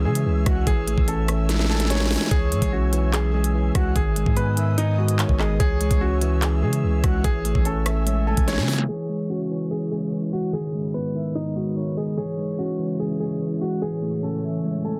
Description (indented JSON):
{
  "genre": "hip hop, drill",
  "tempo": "146 BPM",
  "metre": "4/4",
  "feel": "half-time",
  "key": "unclear",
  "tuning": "A4 = 440 Hz",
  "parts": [
    { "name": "mellow tine electric piano", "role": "accompaniment", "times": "0.0-15.0 s", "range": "D#3 to C#4", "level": "-28 LUFS", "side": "equal", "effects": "none" },
    { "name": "glassy FM pad", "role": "sustained chords", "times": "0.0-15.0 s", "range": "G#2 to E6", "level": "-38 LUFS", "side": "equal", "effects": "ensemble chorus, built-in reverb" },
    { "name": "long sustained 808-style bass", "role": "bass", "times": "0.0-8.9 s", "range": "G#1 to C#3", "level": "-25 LUFS", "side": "equal", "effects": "none" },
    { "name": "dark grand piano", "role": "melody", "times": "0.1-15.0 s", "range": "D#4 to C#5", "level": "-31 LUFS", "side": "equal", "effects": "digital delay" },
    { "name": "drill drum kit", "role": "drums", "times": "0.2-8.9 s", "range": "handclaps, hi-hat, kick drum, rim click, snare drum", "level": "-25 LUFS", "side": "equal", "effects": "none" },
    { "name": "breathy flute-like synth lead", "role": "second line", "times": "0.5-15.0 s", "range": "C#5 to G#5", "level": "-39 LUFS", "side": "equal", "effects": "chorus, digital delay" }
  ],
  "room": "little or no reverb",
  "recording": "dense, heavily limited modern master, low-pass filter",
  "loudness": "-23 LUFS",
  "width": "mono",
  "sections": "0.0-8.9 A section; 8.9-15.0 B section",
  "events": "drum fill 1.5-2.3, 8.5-8.9; filter sweep 8.9-15.0",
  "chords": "0.0 C#m; 0.7 Amaj7; 2.3 C#m; 4.0 G#m; 5.6 C#m; 7.2 Amaj7; 8.9 C#m; 10.5 G#m; 12.2 C#m; 13.8 Amaj7",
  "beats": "0.26 | 0.67 1.08 1.49 1.90 | 2.31 2.72 3.13 3.54 | 3.96 4.37 4.78 5.19 | 5.60 6.01 6.42 6.83 | 7.24 7.66 8.06 8.48 | 8.89 9.30 9.71 10.12 | 10.53 10.94 11.35 11.76 | 12.18 12.59 13.00 13.41 | 13.82 14.23 14.64"
}